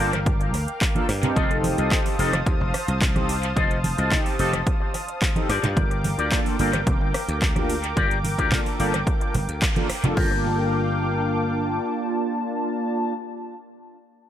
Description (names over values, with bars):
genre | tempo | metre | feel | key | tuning
nu-disco, nu disco | 109 BPM | 4/4 | straight | G minor | A4 = 441 Hz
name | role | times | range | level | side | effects
mellow synth brass | accompaniment | 0.0-13.1 s | Bb3 to A5 | -28 LUFS | right 1 dB | chorus, analog delay
lush unison pad | sustained chords | 0.0-13.1 s | Bb3 to Eb6 | -30 LUFS | equal | chorus, sidechain pumping
electric guitar with an envelope filter | riff | 0.0-13.5 s | F4 to Eb5 | -28 LUFS | left 4 dB | analog chorus, analog delay
dry thumbed slap bass | bass | 0.0-11.8 s | F1 to G2 | -26 LUFS | equal | none
house drum kit | drums | 0.1-10.3 s | crash cymbal, handclaps, hi-hat, rim click | -30 LUFS | equal | overdrive, analog delay
congas | percussion | 0.1-10.1 s | none | -30 LUFS | right 2 dB | analog delay
electronic kick drum | drums | 0.3-10.3 s | none | -24 LUFS | equal | overdrive
room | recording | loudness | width
light reverb, digital ambience | echo-heavy mix | -20 LUFS | side -10 dB against mid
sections
0.0-10.2 A section; 10.2-12.4 B section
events
drop 0.0-10.2; band accent 9.6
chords
0.0 Gm7; 1.4 F7; 5.5 Gm7